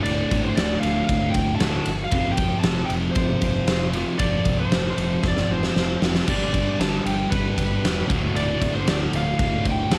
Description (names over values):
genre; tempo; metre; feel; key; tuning
hard rock; 116 BPM; 4/4; straight; D minor; A4 = 438 Hz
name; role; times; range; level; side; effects
smooth overdriven lead guitar; melody; 0.0-10.0 s; B4 to A5; -31 LUFS; equal; cassette tape
crunchy overdriven guitar; riff; 0.0-10.0 s; D2 to G3; -28 LUFS; equal; cassette tape
heavy high-gain guitar; riff; 0.0-10.0 s; D2 to G3; -33 LUFS; equal; distortion, cassette tape
growling fingered electric bass; bass; 0.1-10.0 s; D1 to C2; -31 LUFS; equal; overdrive
big rock drum kit; drums; 0.1-10.0 s; crash cymbal, kick drum, ride cymbal, snare drum, splash cymbal; -26 LUFS; equal; cassette tape
room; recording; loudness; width
studio reverb; home recording on cassette; -22 LUFS; mono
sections
0.0-10.0 A section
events
drum fill 5.2-6.3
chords
0.0 D5; 2.1 F5; 6.3 G; 8.1 Dm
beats
| 0.05 0.57 1.09 1.61 | 2.12 2.64 3.16 3.68 | 4.20 4.72 5.24 5.76 | 6.28 6.80 7.32 7.84 | 8.36 8.88 9.40 9.92